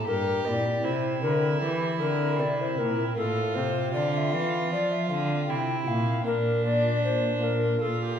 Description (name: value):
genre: classical, baroque-style sonata movement with continuo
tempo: 78 BPM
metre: 4/4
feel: straight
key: F major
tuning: A4 = 440 Hz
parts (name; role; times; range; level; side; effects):
- mellow alto recorder; melody; 0.0-8.2 s; G4 to G5; -28 LUFS; left 3 dB; none
- rich violin; second line; 0.0-8.2 s; D4 to G4; -31 LUFS; right 5 dB; none
- pipe organ, stopped flute; accompaniment; 0.0-8.2 s; G2 to F4; -30 LUFS; equal; none
- rich cello; bass; 0.0-8.2 s; G2 to F3; -31 LUFS; right 2 dB; none
room: wet recital hall reverb, RT60 1.3 s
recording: heard from further back in the room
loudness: -24 LUFS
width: side -8 dB against mid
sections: 0.0-8.2 A section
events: none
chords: 0.1 C7/G; 3.2 F/A; 6.3 Bb